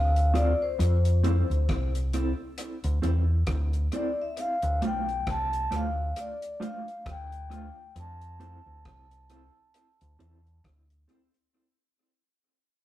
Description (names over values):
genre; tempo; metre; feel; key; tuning
roots reggae; 67 BPM; 4/4; swing 58% on 16ths; unclear; A4 = 440 Hz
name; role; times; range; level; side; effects
vibraphone with medium mallets; melody; 0.0-10.6 s; C5 to A5; -31 LUFS; left 2 dB; none
deep dub fingered electric bass; bass; 0.0-11.0 s; B1 to F2; -26 LUFS; equal; none
deep reggae drum kit; drums; 0.2-11.5 s; hi-hat, kick drum, rim click; -36 LUFS; equal; tape echo
mellow electric guitar; accompaniment; 0.3-11.3 s; A3 to C5; -34 LUFS; right 1 dB; tremolo, tape echo
room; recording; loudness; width
light reverb; rough rehearsal-room recording, warm saturation; -25 LUFS; side -14 dB against mid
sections
0.0-11.5 A section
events
fade-out 0.0-11.5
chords
0.0 Dm7; 0.8 Fmaj7; 4.4 Dm7; 8.0 Fmaj7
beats
| 0.79 1.69 2.58 3.48 | 4.37 5.27 6.16 7.06 | 7.95 8.85 9.74 10.64